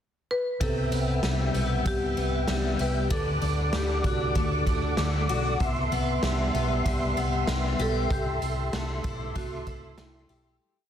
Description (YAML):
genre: dream pop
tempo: 96 BPM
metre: 4/4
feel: straight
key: C lydian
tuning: A4 = 440 Hz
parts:
  - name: marimba with medium hard mallets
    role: melody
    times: 0.3-10.4 s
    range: E4 to B4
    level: -33 LUFS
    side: equal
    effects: tape echo, shimmer reverb
  - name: mellow tonewheel organ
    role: sustained chords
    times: 0.6-10.6 s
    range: B3 to D6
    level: -31 LUFS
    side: right 1 dB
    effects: chorus vibrato, slow rotary speaker, shimmer reverb
  - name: picked twelve-string acoustic guitar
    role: arpeggios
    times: 0.6-10.9 s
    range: C3 to G4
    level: -31 LUFS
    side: left 5 dB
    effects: lush chorus, tape echo, shimmer reverb
  - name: hollow-body short-scale fingered electric bass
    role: bass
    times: 0.6-10.6 s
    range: B1 to D2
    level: -29 LUFS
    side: equal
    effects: none
  - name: raw garage drum kit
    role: drums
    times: 0.6-10.4 s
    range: hi-hat, kick drum, snare drum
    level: -32 LUFS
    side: equal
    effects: none
  - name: vibraphone with hard mallets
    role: texture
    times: 5.6-10.9 s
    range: E5 to D6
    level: -40 LUFS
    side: right 5 dB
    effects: tape echo, shimmer reverb
room: light reverb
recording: dense, heavily limited modern master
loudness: -24 LUFS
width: side -10 dB against mid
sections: 0.0-0.6 pickup bar; 0.6-10.6 verse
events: fade-out 8.1-10.6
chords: 0.0 N.C.; 0.6 Cmaj7; 3.1 D; 5.6 Cmaj7; 8.1 Am7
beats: | 0.61 1.23 1.86 2.48 | 3.11 3.73 4.36 4.98 | 5.61 6.23 6.86 7.48 | 8.11 8.73 9.36 9.98